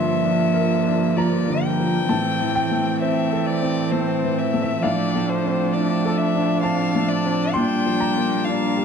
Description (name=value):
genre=neoclassical piano and strings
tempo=66 BPM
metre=3/4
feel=rubato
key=D minor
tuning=A4 = 439 Hz
part: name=rich violin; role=melody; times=0.0-8.8 s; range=C5 to G5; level=-25 LUFS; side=left 7 dB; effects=none
part: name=warm cello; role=second line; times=0.0-8.8 s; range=E3 to G3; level=-24 LUFS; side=right 7 dB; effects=none
part: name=clear upright piano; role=accompaniment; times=0.0-8.8 s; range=G2 to C6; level=-23 LUFS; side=left 3 dB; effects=none
part: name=rich viola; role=accompaniment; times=0.0-8.8 s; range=Bb3 to D4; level=-26 LUFS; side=right 3 dB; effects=none
room=moderate large studio reverb, RT60 1.3 s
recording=dark, warm production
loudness=-18 LUFS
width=side -6 dB against mid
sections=0.0-8.8 A section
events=none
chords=0.0 Gm7; 2.1 Am7; 4.8 Dm7/A; 7.5 Bb6